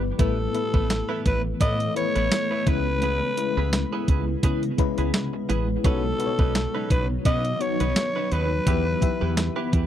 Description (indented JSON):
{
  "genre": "1980s-style pop",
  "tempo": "85 BPM",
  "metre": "4/4",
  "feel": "swing 55% on 16ths",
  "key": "B mixolydian",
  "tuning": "A4 = 440 Hz",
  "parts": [
    { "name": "FM electric piano with tremolo", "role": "accompaniment", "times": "0.0-9.9 s", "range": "A2 to E5", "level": "-30 LUFS", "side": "left 12 dB", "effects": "none" },
    { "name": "granular cloud pad", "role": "sustained chords", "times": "0.0-9.9 s", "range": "C#3 to A4", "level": "-31 LUFS", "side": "right 1 dB", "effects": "built-in reverb" },
    { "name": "direct-recorded clean electric guitar", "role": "riff", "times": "0.0-9.9 s", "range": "F#3 to B4", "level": "-33 LUFS", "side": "right 6 dB", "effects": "lush chorus, tape echo" },
    { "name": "woody fretless electric bass", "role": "bass", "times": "0.0-9.9 s", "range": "G1 to C#3", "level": "-26 LUFS", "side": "equal", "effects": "wide subtle chorus" },
    { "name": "raspy alto saxophone", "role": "melody", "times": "0.2-9.7 s", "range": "A4 to D#5", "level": "-27 LUFS", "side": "equal", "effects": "none" },
    { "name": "clean 12-bit digital drum machine", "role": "drums", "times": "0.2-9.9 s", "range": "hi-hat, kick drum, snare drum, tambourine", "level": "-23 LUFS", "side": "equal", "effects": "none" }
  ],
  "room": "little or no reverb",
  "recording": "dry, close 1970s-style studio recording",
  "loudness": "-21 LUFS",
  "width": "side -10 dB against mid",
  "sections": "0.0-9.9 A section",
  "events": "none",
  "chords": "0.2 Asus2; 2.7 C#m7; 5.8 Badd9; 8.7 Em"
}